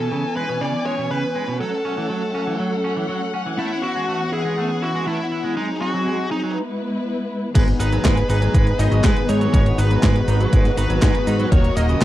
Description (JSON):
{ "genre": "italo disco", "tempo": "121 BPM", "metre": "4/4", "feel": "straight", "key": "F# minor, G# minor from 7.6 s", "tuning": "A4 = 441 Hz", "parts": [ { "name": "bluesy overdriven lead guitar", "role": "melody", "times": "0.0-12.0 s", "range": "D#4 to D#5", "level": "-25 LUFS", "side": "equal", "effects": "distortion, tape echo" }, { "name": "dark studio string section", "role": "sustained chords", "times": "0.0-12.0 s", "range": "D#3 to G#5", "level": "-25 LUFS", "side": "left 2 dB", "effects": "vintage 12-bit sampler grit, low-pass filter" }, { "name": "electric guitar at the edge of break-up", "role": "arpeggios", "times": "0.0-12.0 s", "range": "B2 to E4", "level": "-28 LUFS", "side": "right 4 dB", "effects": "tape echo" }, { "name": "chorused polysynth", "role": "stabs", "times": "7.6-12.0 s", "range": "G#2 to B4", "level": "-26 LUFS", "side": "left 4 dB", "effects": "none" }, { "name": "fat analog bass", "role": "bass", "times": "7.6-12.0 s", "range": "D#1 to G#2", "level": "-19 LUFS", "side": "equal", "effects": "tube saturation" }, { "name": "electronic kick drum", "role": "drums", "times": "7.6-12.0 s", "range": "none", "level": "-18 LUFS", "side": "equal", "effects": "none" }, { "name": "gated 80s digital drum machine", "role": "drums", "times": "7.6-12.0 s", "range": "cabasa, crash cymbal, handclaps, hi-hat, snare drum", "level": "-24 LUFS", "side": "right 1 dB", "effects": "gated reverb, gated reverb snare, low-pass filter on hats, low-pass filter on cymbals, low-pass filter on perc, low-pass filter on snare, low-pass filter on room" } ], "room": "little or no reverb", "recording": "dry, close 1970s-style studio recording", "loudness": "-18 LUFS", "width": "side -14 dB against mid", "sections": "0.0-7.6 A section; 7.6-12.0 B section", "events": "filter sweep on string section 0.0-7.6; break 6.6-7.6", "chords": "0.0 C#m7; 1.6 F#m; 3.6 Aadd9; 5.6 G#7; 6.6 E; 7.6 G#m; 11.5 D#m" }